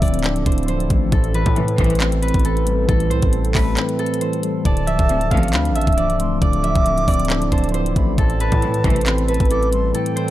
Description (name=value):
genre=hip hop, trap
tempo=136 BPM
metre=4/4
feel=half-time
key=D dorian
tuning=A4 = 439 Hz
part: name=concert harp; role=melody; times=0.0-10.3 s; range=A4 to F5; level=-23 LUFS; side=equal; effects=none
part: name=mellow tine electric piano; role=accompaniment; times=0.0-10.3 s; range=A2 to D4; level=-23 LUFS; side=moving between left 4 dB and right 3 dB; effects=auto-pan
part: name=warbly tape-like pad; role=sustained chords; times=0.0-10.3 s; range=F3 to A4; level=-29 LUFS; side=equal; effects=chorus, built-in reverb
part: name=distorted 808-style bass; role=bass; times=0.0-9.9 s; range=C1 to A2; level=-21 LUFS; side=equal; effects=distortion
part: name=trap drum kit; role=drums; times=0.0-10.3 s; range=handclaps, hi-hat, kick drum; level=-20 LUFS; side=equal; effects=none
part: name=dark chamber string section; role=stabs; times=1.6-2.1, 5.1-5.6, 8.6-9.2 s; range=C2 to F3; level=-26 LUFS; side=equal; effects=none
part: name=concert flute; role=second line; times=4.7-10.3 s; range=G5 to D6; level=-28 LUFS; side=right 3 dB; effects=tape echo
room=small room ambience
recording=dry, gritty hardware recording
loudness=-16 LUFS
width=side -14 dB against mid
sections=0.0-10.3 A section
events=break 3.8-4.7, 9.9-10.3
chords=0.0 Dm7; 1.1 Am7; 4.7 Dm7; 8.2 Am7